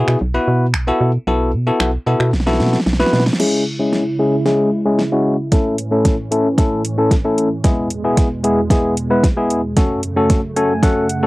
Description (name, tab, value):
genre	dance-pop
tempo	113 BPM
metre	4/4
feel	straight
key	C# minor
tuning	A4 = 440 Hz
part	bell-like tine electric piano	accompaniment	0.0-11.3 s	G#3 to G#5	-16 LUFS	left 1 dB	sidechain pumping, low-pass filter, cassette tape
part	organ-like FM bass	bass	0.0-3.3 s	B1 to B2	-17 LUFS	equal	sidechain pumping
part	smooth R&B drum kit	drums	0.1-11.2 s	crash cymbal, finger snaps, hi-hat, kick drum, snare drum	-16 LUFS	equal	overdrive, cassette tape
part	warm analog pad	sustained chords	3.4-11.3 s	E2 to E4	-23 LUFS	right 1 dB	chorus, sidechain pumping, low-pass filter, cassette tape
room	light reverb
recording	home recording on cassette, faint mains hum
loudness	-14 LUFS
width	side -20 dB against mid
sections	0.0-3.4 A section; 3.4-11.3 B section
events	drum fill 2.3-3.4, 3.4-11.3; build-up 3.4-11.3; filter sweep 3.4-11.3; tine electric piano fill 10.3-11.3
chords	0.0 B7sus4; 3.4 C#m; 5.5 A; 7.6 E; 9.8 F#m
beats	0.21 0.74 | 1.27 1.80 2.33 2.87 | 3.40 3.93 4.46 4.99 | 5.52 6.05 6.58 7.11 | 7.64 8.18 8.71 9.24 | 9.77 10.30 10.83